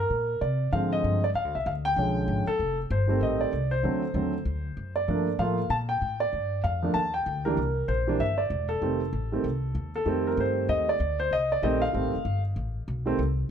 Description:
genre	jazz piano trio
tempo	193 BPM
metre	4/4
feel	swing 61% on 8ths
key	F mixolydian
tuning	A4 = 442 Hz
part	warm concert grand piano	melody	0.0-13.2 s	D3 to A5	-26 LUFS	right 1 dB	plate reverb
part	upright bass	bass	0.0-13.5 s	Eb1 to C3	-29 LUFS	left 1 dB	none
room	light reverb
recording	none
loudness	-25 LUFS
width	side -8 dB against mid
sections	0.0-10.1 A section; 10.1-13.5 A section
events	none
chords	0.1 Bb9; 1.4 Bdim7; 2.6 F9; 3.8 D7; 5.1 Gm7; 7.6 C9; 8.8 F9

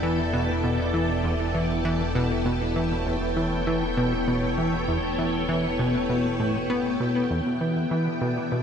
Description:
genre	ambient, sequencer-driven space music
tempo	99 BPM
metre	4/4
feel	straight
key	E dorian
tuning	A4 = 440 Hz
part	string machine, full ensemble	sustained chords	0.0-8.6 s	B3 to G5	-26 LUFS	equal	ensemble chorus
part	plucky analog bass	riff	0.0-8.6 s	E2 to B3	-26 LUFS	equal	tape echo
part	fat analog bass	bass	0.0-7.3 s	E1	-32 LUFS	equal	tube saturation
room	wet lush hall reverb, RT60 3.0 s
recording	dreamy mix soaked in reverb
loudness	-22 LUFS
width	side -7 dB against mid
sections	0.0-7.3 A section; 7.3-8.6 B section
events	none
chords	0.0 Em; 7.3 Em7

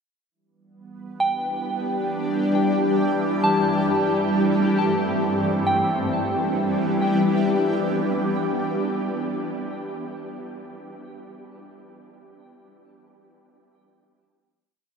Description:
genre	ambient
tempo	free time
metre	none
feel	none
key	G major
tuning	A4 = 440 Hz
part	shimmering ambient pad	sustained chords	1.0-9.1 s	G2 to G4	-22 LUFS	equal	chorus, built-in reverb, phaser
part	analog drone	drone	1.6-9.2 s	G3 to D4	-29 LUFS	left 1 dB	chorus
part	soft synth bell	arpeggios	1.2-10.9 s	G5 to A5	-27 LUFS	equal	chorus, ping-pong delay
room	wet huge ambient reverb, RT60 8.9 s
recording	none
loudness	-20 LUFS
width	side -6 dB against mid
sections	0.3-5.7 A section; 5.7-8.4 final chord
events	none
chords	0.3 G6; 3.0 Am7/G; 5.7 G6

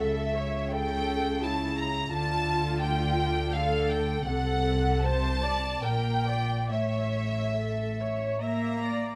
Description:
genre	classical, slow romantic movement for string orchestra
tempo	67-88 BPM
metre	3/4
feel	rubato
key	D minor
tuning	A4 = 439 Hz
part	dark studio violin section	melody	0.0-8.4 s	E5 to Bb5	-35 LUFS	equal	none
part	warm studio violin section	second line	0.0-9.2 s	E5 to Bb5	-38 LUFS	equal	none
part	dark studio viola section	accompaniment	0.0-9.2 s	E4 to E5	-35 LUFS	equal	none
part	dark studio double bass section	bass	0.0-9.0 s	A1 to D2	-34 LUFS	equal	none
part	warm studio cello section	bass	0.0-9.2 s	A2 to Bb3	-35 LUFS	equal	none
room	light reverb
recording	close, detailed microphones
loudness	-28 LUFS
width	mono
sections	0.0-9.2 A section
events	none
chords	0.0 A/C#; 2.1 Dm; 4.3 D7/C; 5.8 Gm/Bb; 6.7 A

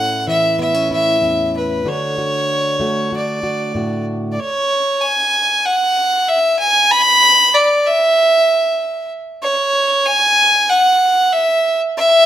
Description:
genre	folk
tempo	95 BPM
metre	4/4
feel	straight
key	unclear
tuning	A4 = 440 Hz
part	clear fiddle	melody	0.0-12.3 s	B4 to B5	-13 LUFS	equal	slapback echo
part	fingerpicked plugged-in steel-string acoustic guitar	accompaniment	0.0-4.4 s	E2 to F#4	-21 LUFS	left 1 dB	none
room	studio reverb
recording	rough home demo mix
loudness	-12 LUFS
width	side -11 dB against mid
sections	0.0-4.4 A section; 4.4-12.3 B section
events	none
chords	0.0 A; 1.9 D; 4.4 N.C.

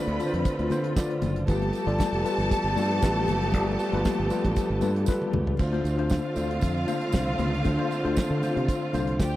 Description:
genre	disco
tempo	117 BPM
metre	4/4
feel	straight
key	D dorian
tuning	A4 = 441 Hz
part	clear studio string section	second line	0.0-9.4 s	F4 to B5	-32 LUFS	equal	none
part	tine electric piano	accompaniment	0.0-9.4 s	D3 to D5	-28 LUFS	left 2 dB	medium stereo tremolo
part	warm studio string section	sustained chords	0.0-9.4 s	D3 to G4	-32 LUFS	right 2 dB	none
part	fingered electric bass	bass	0.1-9.4 s	F1 to D3	-28 LUFS	right 1 dB	none
part	damped 70s drum kit	drums	0.1-9.3 s	crash cymbal, hi-hat, kick drum, snare drum, toms	-26 LUFS	right 1 dB	none
part	tambourine	percussion	0.2-9.3 s	none	-46 LUFS	right 13 dB	none
part	congas	percussion	0.7-9.3 s	none	-36 LUFS	left 6 dB	none
room	little or no reverb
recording	dry, close 1970s-style studio recording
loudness	-23 LUFS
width	side -15 dB against mid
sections	0.0-5.6 A section; 5.6-9.4 B section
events	drum fill 5.1-5.6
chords	0.0 Dm7; 1.5 G9; 5.6 Dm7

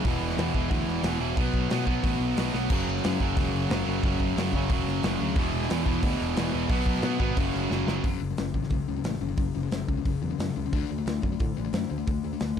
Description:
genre	heavy metal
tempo	180 BPM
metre	4/4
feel	straight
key	F# minor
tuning	A4 = 440 Hz
part	heavy high-gain guitar	riff	0.0-8.1 s	E2 to B3	-35 LUFS	right 1 dB	distortion
part	high-gain distorted guitar	riff	0.0-8.0 s	E2 to B3	-30 LUFS	right 16 dB	distortion
part	sludgy distorted guitar	riff	0.0-12.6 s	E2 to D4	-30 LUFS	left 12 dB	overdrive
part	picked electric bass	bass	0.0-12.6 s	E1 to B2	-31 LUFS	equal	none
part	modern studio drum kit	drums	0.0-12.6 s	crash cymbal, hi-hat, kick drum, snare drum	-30 LUFS	equal	none
room	little or no reverb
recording	dark, warm production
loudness	-24 LUFS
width	side -8 dB against mid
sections	0.0-8.0 A section; 8.0-12.6 B section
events	drum fill 2.5, 7.7-8.0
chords	0.1 E5; 1.4 B5; 2.7 F#5; 5.4 E5; 6.7 B5; 7.4 F#5; 10.7 D5

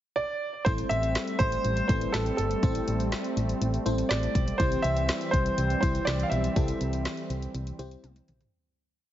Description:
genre	synth-pop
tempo	122 BPM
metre	4/4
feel	straight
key	A minor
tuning	A4 = 440 Hz
part	warm concert grand piano	melody	0.2-7.2 s	A4 to F5	-30 LUFS	right 1 dB	digital delay
part	FM electric piano with soft pad layer	accompaniment	0.7-8.4 s	C4 to C5	-35 LUFS	left 2 dB	chorus, tremolo
part	warm analog pad	sustained chords	0.7-8.5 s	E3 to C4	-33 LUFS	right 1 dB	chorus
part	solid FM bass	bass	0.7-8.5 s	G1 to C2	-30 LUFS	equal	none
part	deep house drum kit	drums	0.7-8.5 s	hi-hat, kick drum, snare drum, toms	-30 LUFS	equal	none
room	light reverb, digital ambience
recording	heavily compressed radio sound, multiband compression, nothing above 7.5 kHz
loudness	-25 LUFS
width	side -12 dB against mid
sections	0.0-0.7 pickup bar; 0.7-8.5 verse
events	fade-out 6.6-8.5; drum fill 8.0-8.5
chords	0.0 N.C.; 0.7 Am7; 4.6 C

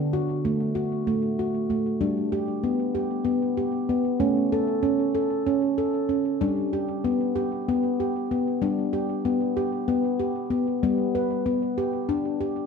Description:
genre	world meditative, meditative tuned percussion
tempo	190 BPM (eighths)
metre	7/8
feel	straight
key	G lydian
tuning	A4 = 441 Hz
part	handpan	solo	0.0-12.7 s	D3 to B4	-23 LUFS	equal	tape echo
room	wet echo chamber reverb, RT60 1.4 s, studio ambience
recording	none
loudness	-23 LUFS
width	side -5 dB against mid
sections	0.0-10.8 A section; 10.8-12.7 B section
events	none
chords	0.0 D; 2.0 G; 4.2 A; 6.4 G

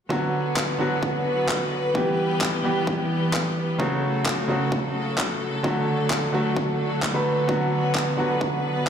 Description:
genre	EDM, festival progressive house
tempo	130 BPM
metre	4/4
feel	straight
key	unclear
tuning	A4 = 440 Hz
part	bright baby grand piano	accompaniment	0.1-8.9 s	C#3 to B4	-24 LUFS	equal	sidechain pumping, dub echo
part	bright symphonic string section	sustained chords	0.1-8.9 s	C#3 to B4	-27 LUFS	equal	sidechain pumping
part	electronic kick drum	drums	0.1-8.5 s	none	-30 LUFS	equal	high-pass filter on kick, high-pass filter on room
part	electronic handclaps	drums	0.6-8.0 s	none	-28 LUFS	equal	none
room	moderate lush hall reverb, RT60 1.8 s, small room ambience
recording	played on a big sound system in a bare room, large studio reverb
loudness	-21 LUFS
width	side -8 dB against mid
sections	0.1-8.9 A section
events	none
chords	0.1 Bm; 1.9 Em; 3.8 F#m; 5.6 D; 7.5 Bm

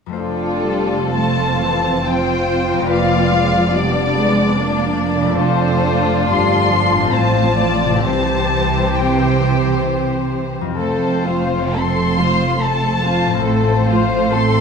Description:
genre	classical, slow romantic movement for symphony orchestra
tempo	58-76 BPM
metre	3/4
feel	rubato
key	F major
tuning	A4 = 441 Hz
part	concert harp	arpeggios	0.1-14.6 s	F2 to C5	-24 LUFS	left 8 dB	none
part	warm studio violin section	melody	0.2-14.6 s	A4 to C6	-21 LUFS	left 3 dB	none
part	rich chamber violin section	second line	0.2-14.6 s	D4 to D5	-20 LUFS	left 3 dB	none
part	dark chamber viola section	accompaniment	0.2-14.6 s	E3 to D4	-21 LUFS	right 1 dB	none
part	dark chamber double bass section	bass	0.2-14.6 s	F1 to C2	-23 LUFS	right 4 dB	none
part	rich chamber cello section	bass	0.2-14.6 s	F2 to C3	-22 LUFS	right 4 dB	none
room	wet concert hall reverb, RT60 2.1 s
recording	minimal, uncompressed stereo recording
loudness	-14 LUFS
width	side -6 dB against mid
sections	0.2-14.6 A section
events	none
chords	0.2 F; 2.9 Fdim7; 5.4 F; 7.1 F/A; 8.0 C; 10.8 F; 13.4 F/A

